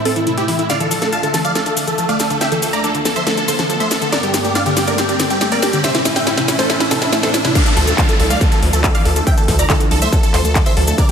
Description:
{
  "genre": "uplifting trance",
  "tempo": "140 BPM",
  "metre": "4/4",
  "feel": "straight",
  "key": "D minor",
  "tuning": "A4 = 439 Hz",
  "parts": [
    { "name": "analog string pad", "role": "sustained chords", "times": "0.0-11.1 s", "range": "D2 to E5", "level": "-26 LUFS", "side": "right 1 dB", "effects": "ensemble chorus, sidechain pumping" },
    { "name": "riser and downlifter", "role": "sound effects", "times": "0.0-11.0 s", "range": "none", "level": "-24 LUFS", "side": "equal", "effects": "none" },
    { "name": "big supersaw lead", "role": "melody", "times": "0.1-11.1 s", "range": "C4 to Bb5", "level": "-18 LUFS", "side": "right 1 dB", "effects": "phaser, sidechain pumping, digital delay" },
    { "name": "analog pluck", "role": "second line", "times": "0.1-11.1 s", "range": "E4 to Bb5", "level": "-27 LUFS", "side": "equal", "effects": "none" },
    { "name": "wide unison pluck", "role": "arpeggios", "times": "0.1-11.1 s", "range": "C3 to E4", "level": "-23 LUFS", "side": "left 2 dB", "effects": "cassette tape, sidechain pumping, digital delay" },
    { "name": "techno drum kit", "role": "drums", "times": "0.1-11.1 s", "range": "crash cymbal, handclaps, hi-hat, shaker, snare drum", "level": "-20 LUFS", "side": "left 1 dB", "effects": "none" },
    { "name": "electronic kick drum", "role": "drums", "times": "7.6-11.1 s", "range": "none", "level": "-15 LUFS", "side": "equal", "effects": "distortion" },
    { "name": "gritty driven synth bass", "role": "bass", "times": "7.8-10.9 s", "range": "C2 to D2", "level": "-17 LUFS", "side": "equal", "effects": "sidechain pumping" }
  ],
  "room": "moderate concert hall reverb, RT60 2.4 s",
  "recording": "none",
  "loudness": "-13 LUFS",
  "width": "side -7 dB against mid",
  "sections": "0.0-7.6 A section; 7.6-11.1 B section",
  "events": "build-up 0.0-7.6; riser 0.0-7.6; filter sweep on synth pluck 0.0-7.6; drum fill 0.7-7.6; drop 7.6-11.1",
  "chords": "0.0 Am; 0.7 Dmadd9; 4.1 Gmadd9; 5.8 Am; 7.6 Dmadd9"
}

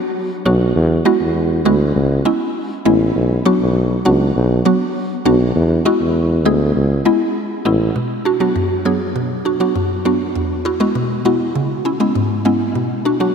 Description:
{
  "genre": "dancehall",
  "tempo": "100 BPM",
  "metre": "4/4",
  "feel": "straight",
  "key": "B dorian",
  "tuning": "A4 = 440 Hz",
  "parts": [
    { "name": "mallet-like synth pluck", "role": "accompaniment", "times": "0.5-13.3 s", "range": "E2 to G#4", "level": "-16 LUFS", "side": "equal", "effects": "chorus, phaser" },
    { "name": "breathy tuba", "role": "bass", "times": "0.5-7.9 s", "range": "A1 to E2", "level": "-15 LUFS", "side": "equal", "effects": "none" }
  ],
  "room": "wet huge ambient reverb, RT60 4.0 s",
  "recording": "dreamy mix soaked in reverb",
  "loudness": "-14 LUFS",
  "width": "side -6 dB against mid",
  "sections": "0.0-8.0 A section; 8.0-13.3 B section",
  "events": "none",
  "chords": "0.0 Bm; 0.8 Eadd9; 2.0 C#m7; 3.2 Bm; 5.6 E; 6.8 C#m7; 8.0 Bm; 10.4 Eadd9; 11.6 C#m7; 12.8 Bm"
}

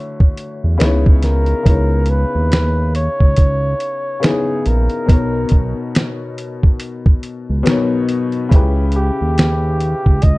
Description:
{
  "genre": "lo-fi hip hop",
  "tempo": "70 BPM",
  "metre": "4/4",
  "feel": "swing 61% on 16ths",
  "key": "C# dorian",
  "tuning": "A4 = 440 Hz",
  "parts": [
    { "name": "breathy flugelhorn", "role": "melody", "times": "0.0-10.4 s", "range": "G4 to D#5", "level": "-22 LUFS", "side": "equal", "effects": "low-pass filter" },
    { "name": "warm upright piano", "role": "accompaniment", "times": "0.0-10.4 s", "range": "B2 to C#5", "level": "-21 LUFS", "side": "left 3 dB", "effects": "low-pass filter" },
    { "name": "dusty soul sampler-style drum kit", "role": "drums", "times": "0.2-10.4 s", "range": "finger snaps, hi-hat, kick drum, snare drum", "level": "-12 LUFS", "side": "equal", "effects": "vintage 12-bit sampler grit" },
    { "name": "smooth gliding synth bass", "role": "bass", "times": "0.6-10.4 s", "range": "A#1 to E2", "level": "-16 LUFS", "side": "equal", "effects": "none" }
  ],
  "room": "light reverb",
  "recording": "dark, warm production",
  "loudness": "-13 LUFS",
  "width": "side -21 dB against mid",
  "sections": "0.0-1.7 A section; 1.7-10.4 A section",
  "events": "none",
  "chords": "0.0 Dmaj7; 0.8 C#m9; 1.7 C#m7; 5.1 Bmaj7; 8.5 A7/C# (rootless)"
}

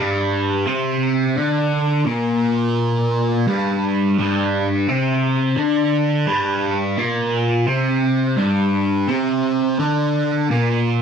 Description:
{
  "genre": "rock",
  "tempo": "57 BPM (dotted quarters)",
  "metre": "6/8",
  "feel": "straight",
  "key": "G minor",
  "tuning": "A4 = 443 Hz",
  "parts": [
    { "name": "fuzz guitar", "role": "solo", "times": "0.0-11.0 s", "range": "G2 to D4", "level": "-17 LUFS", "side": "equal", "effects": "distortion, phaser" }
  ],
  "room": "light reverb",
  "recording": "dry, close 1970s-style studio recording",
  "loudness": "-17 LUFS",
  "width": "side -7 dB against mid",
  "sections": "0.0-11.0 A section",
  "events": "none",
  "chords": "0.0 Gm"
}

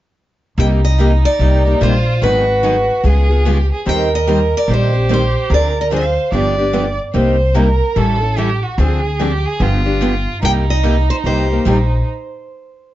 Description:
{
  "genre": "acoustic string swing (jazz manouche)",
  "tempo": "146 BPM",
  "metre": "4/4",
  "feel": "swing 62% on 8ths",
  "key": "C minor",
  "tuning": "A4 = 440 Hz",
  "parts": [
    { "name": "picked steel-string acoustic guitar", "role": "melody", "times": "0.6-6.6, 10.4-12.9 s", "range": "Cb5 to G5", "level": "-20 LUFS", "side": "equal", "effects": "none" },
    { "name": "warm violin", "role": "second line", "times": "0.6-12.0 s", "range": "Eb4 to D5", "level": "-20 LUFS", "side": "right 3 dB", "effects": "none" },
    { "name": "picked steel-string acoustic guitar", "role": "accompaniment", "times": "0.6-11.8 s", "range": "C3 to C5", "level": "-20 LUFS", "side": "left 4 dB", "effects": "none" },
    { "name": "picked steel-string acoustic guitar", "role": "accompaniment", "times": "0.6-11.8 s", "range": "C3 to C5", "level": "-24 LUFS", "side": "right 5 dB", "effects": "none" },
    { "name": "upright bass", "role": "bass", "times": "0.6-12.0 s", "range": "G1 to Eb2", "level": "-15 LUFS", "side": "equal", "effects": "none" }
  ],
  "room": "light reverb",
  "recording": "dark, warm production, nothing above 7.6 kHz",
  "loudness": "-12 LUFS",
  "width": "side -14 dB against mid",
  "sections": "0.6-12.9 A section",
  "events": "stop 12.1-12.9",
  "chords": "0.6 Cm7; 2.2 Abm7; 3.0 Db7; 3.9 Eb6; 5.5 Dm7b5; 6.3 G7; 7.1 Cm7; 8.0 A7; 8.8 Dm7b5; 9.6 G7; 10.4 Cm7"
}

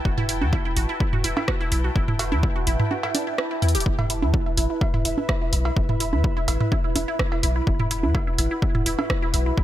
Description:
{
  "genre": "minimal techno",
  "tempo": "126 BPM",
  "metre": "4/4",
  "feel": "straight",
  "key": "E minor",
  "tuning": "A4 = 440 Hz",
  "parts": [
    { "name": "bubbling stepped-filter texture", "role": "texture", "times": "0.0-9.6 s", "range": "E4 to G5", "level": "-38 LUFS", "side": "equal", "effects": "chorus, built-in reverb, sidechain pumping" },
    { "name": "warbly tape-like pad", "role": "texture", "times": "0.0-9.6 s", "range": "E4 to B5", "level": "-34 LUFS", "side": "left 1 dB", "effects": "chorus, built-in reverb, sidechain pumping" },
    { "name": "resonant blip pluck", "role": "riff", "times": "0.1-9.6 s", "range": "D4 to G4", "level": "-28 LUFS", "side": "right 2 dB", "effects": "phaser, sidechain pumping, tape echo" },
    { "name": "punchy sub bass", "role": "bass", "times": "0.1-9.6 s", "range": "D1 to E2", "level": "-25 LUFS", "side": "equal", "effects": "sidechain pumping" },
    { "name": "electronic kick drum", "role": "drums", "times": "0.1-9.6 s", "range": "none", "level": "-24 LUFS", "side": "equal", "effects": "overdrive" },
    { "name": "electronic toms, congas and cowbell", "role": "percussion", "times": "0.2-9.1 s", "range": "none", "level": "-27 LUFS", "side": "right 2 dB", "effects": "tape echo" },
    { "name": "punchy analog drum machine", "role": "drums", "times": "0.3-9.4 s", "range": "hi-hat, rim click", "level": "-28 LUFS", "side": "right 2 dB", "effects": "overdrive" }
  ],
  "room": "little or no reverb",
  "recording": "none",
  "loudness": "-20 LUFS",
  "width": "side -13 dB against mid",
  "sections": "0.0-9.6 A section",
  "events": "kick drops out 2.9-3.9; drum fill 3.6",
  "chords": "0.0 E5"
}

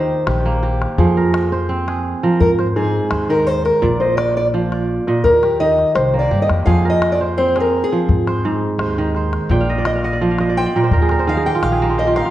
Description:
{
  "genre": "west african traditional, West African string and xylophone music",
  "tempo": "84 BPM",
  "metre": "4/4",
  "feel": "straight",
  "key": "unclear",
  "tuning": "A4 = 441 Hz",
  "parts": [
    { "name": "fingerpicked old ladder-braced acoustic guitar", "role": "melody", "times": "0.0-12.3 s", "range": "Ab4 to G5", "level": "-18 LUFS", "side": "left 1 dB", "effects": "none" },
    { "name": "kora", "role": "arpeggios", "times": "0.0-12.3 s", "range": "Ab2 to G5", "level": "-18 LUFS", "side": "right 2 dB", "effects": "none" },
    { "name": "upright bass", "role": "bass", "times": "0.0-12.2 s", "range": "Bb1 to Ab2", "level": "-21 LUFS", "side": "left 1 dB", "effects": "none" },
    { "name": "calabash", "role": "percussion", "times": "0.3-12.3 s", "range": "none", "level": "-23 LUFS", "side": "left 2 dB", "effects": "none" }
  ],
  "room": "moderate recital hall reverb, RT60 1.5 s",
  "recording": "worn, warbling old tape, cassette tape, warbly pitch drift",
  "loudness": "-14 LUFS",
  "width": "side -14 dB against mid",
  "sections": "0.0-12.3 A section",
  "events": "steel-string acoustic guitar solo 0.0-12.3; kora fill 9.5-12.3",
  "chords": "0.0 Eb; 1.0 Fm; 2.4 Ab; 3.8 Bb; 5.2 Eb; 6.7 Fm; 8.1 Ab; 9.5 Bb5; 10.9 Eb5"
}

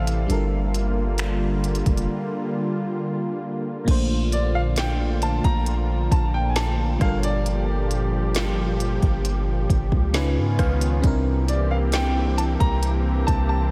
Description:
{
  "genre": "contemporary R&B",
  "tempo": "67 BPM",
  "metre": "4/4",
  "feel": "straight",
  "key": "unclear",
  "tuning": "A4 = 441 Hz",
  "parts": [
    { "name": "warm grand piano", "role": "melody", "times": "0.0-13.7 s", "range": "Db5 to Bb5", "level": "-32 LUFS", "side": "equal", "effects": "delay" },
    { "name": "FM electric piano", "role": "accompaniment", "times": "0.0-13.7 s", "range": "A2 to Ab5", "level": "-32 LUFS", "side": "equal", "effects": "chorus" },
    { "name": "warm analog pad", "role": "sustained chords", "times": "0.0-13.7 s", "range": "Bb2 to A4", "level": "-30 LUFS", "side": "equal", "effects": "chorus" },
    { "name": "long sustained 808-style bass", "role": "bass", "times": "0.0-13.7 s", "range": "F1 to Ab2", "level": "-26 LUFS", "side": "equal", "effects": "none" },
    { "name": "smooth R&B drum kit", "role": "drums", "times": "0.1-13.5 s", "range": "crash cymbal, finger snaps, hi-hat, kick drum, rim click, snare drum", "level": "-27 LUFS", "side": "equal", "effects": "none" }
  ],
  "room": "light reverb, digital ambience",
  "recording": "none",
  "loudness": "-23 LUFS",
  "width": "mono",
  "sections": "0.0-3.9 A section; 3.9-13.7 B section",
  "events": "break 2.1-3.9; FM electric piano fill 9.7-11.0",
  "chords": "0.3 Gm7; 3.9 Bbmaj7; 7.0 Gm9; 10.1 Db9; 11.0 C7"
}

